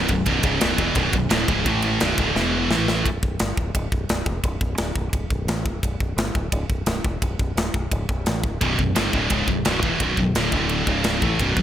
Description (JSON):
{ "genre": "heavy metal", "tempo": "173 BPM", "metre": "4/4", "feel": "straight", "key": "B minor", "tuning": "A4 = 439 Hz", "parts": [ { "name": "scooped high-gain guitar", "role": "riff", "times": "0.0-3.1, 8.6-11.6 s", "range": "B1 to A3", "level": "-20 LUFS", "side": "right 1 dB", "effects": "distortion" }, { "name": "growling fingered electric bass", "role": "bass", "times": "0.0-11.6 s", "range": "B0 to A1", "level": "-26 LUFS", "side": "equal", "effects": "overdrive" }, { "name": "tight metal drum kit", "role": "drums", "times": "0.1-11.6 s", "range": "kick drum, ride cymbal, snare drum", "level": "-24 LUFS", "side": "equal", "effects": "gated reverb" } ], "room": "light reverb, small room ambience", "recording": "bright 1980s-style digital production", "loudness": "-20 LUFS", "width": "side -11 dB against mid", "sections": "0.0-3.1 A section; 3.1-11.6 B section", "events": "drum fill 2.4-3.1", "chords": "0.0 Bm; 1.7 A5; 2.0 Bm; 2.4 E5; 2.7 A5; 3.1 Bm; 10.5 D5; 10.9 C#5" }